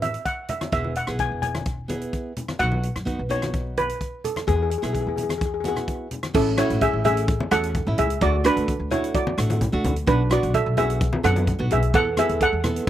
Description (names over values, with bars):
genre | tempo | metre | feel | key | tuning
calypso | 128 BPM | 4/4 | straight | A major | A4 = 438 Hz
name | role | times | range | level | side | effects
steel pan | melody | 0.0-12.8 s | C#4 to G#5 | -23 LUFS | right 1 dB | none
nylon-string guitar | accompaniment | 0.0-12.9 s | A3 to B4 | -29 LUFS | right 2 dB | none
upright bass | bass | 0.0-12.9 s | E1 to F#2 | -26 LUFS | equal | none
natural country drum kit | drums | 0.0-12.9 s | crash cymbal, hi-hat, kick drum, rim click | -29 LUFS | equal | none
congas | percussion | 0.0-12.8 s | none | -31 LUFS | left 2 dB | none
room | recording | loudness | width
little or no reverb | recorded outdoors, with no room sound | -20 LUFS | side -12 dB against mid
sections
0.0-6.3 A section; 6.3-12.9 B section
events
none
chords
0.0 A; 0.7 E; 2.6 B; 4.5 E; 6.3 Amaj7; 8.2 D6; 10.1 Bm7; 11.9 Esus4